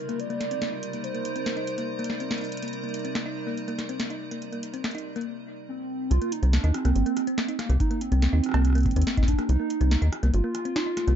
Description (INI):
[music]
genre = IDM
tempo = 142 BPM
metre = 4/4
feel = straight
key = C minor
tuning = A4 = 440 Hz
[part]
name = warbly nostalgic lead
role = melody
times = 0.0-2.5, 5.7-11.2 s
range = Bb3 to D5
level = -30 LUFS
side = right 4 dB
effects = wide subtle chorus, dub echo
[part]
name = icy glass pad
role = sustained chords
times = 0.0-5.3 s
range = C3 to D5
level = -35 LUFS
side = right 1 dB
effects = chorus, built-in reverb
[part]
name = thumb-piano-like synth pluck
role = arpeggios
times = 0.1-11.1 s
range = Bb3 to Eb4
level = -34 LUFS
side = left 3 dB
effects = chorus, ping-pong delay
[part]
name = booming analog drum machine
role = drums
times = 0.1-11.2 s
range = cowbell, hi-hat, rim click, snare drum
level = -32 LUFS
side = equal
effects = overdrive
[part]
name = rubbery square bass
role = bass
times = 6.1-11.2 s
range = G1 to Eb2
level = -21 LUFS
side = equal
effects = none
[part]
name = electronic kick drum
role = drums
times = 7.8-9.4 s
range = none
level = -24 LUFS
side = equal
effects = overdrive
[sound]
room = little or no reverb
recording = dark, warm production, nothing above 7.5 kHz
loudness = -24 LUFS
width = side -9 dB against mid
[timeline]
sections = 0.0-6.1 A section; 6.1-11.2 B section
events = filter sweep on synth arpeggio sound 0.0-6.1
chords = 0.0 Cm7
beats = 0.20 0.62 | 1.04 1.46 1.89 2.31 | 2.73 3.15 3.58 4.00 | 4.42 4.84 5.26 5.69 | 6.11 6.53 6.96 7.38 | 7.80 8.22 8.65 9.07 | 9.49 9.91 10.34 10.76